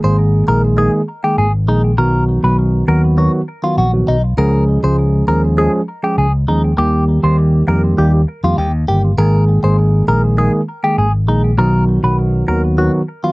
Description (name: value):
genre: afrobeats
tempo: 100 BPM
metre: 4/4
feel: straight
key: unclear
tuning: A4 = 440 Hz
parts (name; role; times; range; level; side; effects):
- direct-recorded clean electric guitar; melody; 0.0-13.3 s; Eb4 to C5; -20 LUFS; left 1 dB; phaser, cassette tape, analog delay
- mellow tine electric piano; accompaniment; 0.0-13.3 s; Eb3 to Ab4; -16 LUFS; right 1 dB; cassette tape
- fingered electric bass; bass; 0.0-12.9 s; G1 to F2; -14 LUFS; equal; none
room: light reverb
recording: home recording on cassette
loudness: -12 LUFS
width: side -24 dB against mid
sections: 0.0-13.3 A section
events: none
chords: 0.0 Absus2; 2.0 B; 4.4 Db; 6.8 Eb; 9.2 Absus2; 11.6 B